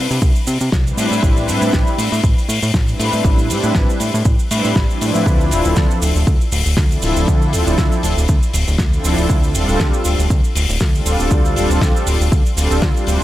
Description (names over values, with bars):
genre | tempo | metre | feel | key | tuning
nu-disco, nu disco | 119 BPM | 4/4 | swing 55% on 16ths | unclear | A4 = 440 Hz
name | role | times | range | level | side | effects
fat analog bass | bass | 0.0-13.2 s | D1 to C3 | -18 LUFS | equal | tube saturation, sidechain pumping
damped 70s drum kit | drums | 0.1-13.2 s | cabasa, hi-hat, snare drum | -22 LUFS | left 1 dB | none
electronic kick drum | drums | 0.2-12.9 s | none | -16 LUFS | equal | none
warm analog pad | accompaniment | 0.9-13.2 s | F3 to D5 | -20 LUFS | equal | analog chorus, cassette tape, sidechain pumping, tape echo
room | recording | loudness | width
small room ambience | none | -13 LUFS | side -14 dB against mid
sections
0.0-13.2 A section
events
none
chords
0.0 Cmaj7; 1.0 Am11; 5.3 Dm7; 9.3 G9sus4/D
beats
0.22 0.72 | 1.23 1.73 2.24 2.74 | 3.25 3.75 4.25 4.76 | 5.26 5.77 6.27 6.78 | 7.28 7.78 8.29 8.79 | 9.30 9.80 10.30 10.81 | 11.31 11.82 12.32 12.83